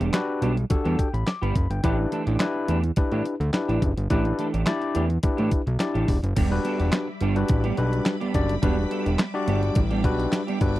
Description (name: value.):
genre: early-eighties boogie funk.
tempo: 106 BPM.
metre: 4/4.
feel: straight.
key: E minor.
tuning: A4 = 441 Hz.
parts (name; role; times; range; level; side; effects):
clean electric guitar; riff; 0.0-10.8 s; E3 to A4; -28 LUFS; right 5 dB; ensemble chorus.
fat analog bass; bass; 0.0-10.8 s; E1 to A2; -24 LUFS; equal; none.
detuned 8-bit digital drum machine; drums; 0.0-10.8 s; crash cymbal, handclaps, hi-hat, kick drum, snare drum; -24 LUFS; equal; none.
overdriven tine electric piano; accompaniment; 0.1-10.8 s; D4 to D6; -27 LUFS; left 3 dB; none.
string machine, violins; sustained chords; 6.4-10.8 s; G3 to D6; -34 LUFS; equal; ensemble chorus.
room: little or no reverb.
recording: dry, close 1970s-style studio recording.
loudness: -21 LUFS.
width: side -16 dB against mid.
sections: 0.0-6.4 A section; 6.4-10.8 B section.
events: none.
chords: 0.0 Em7.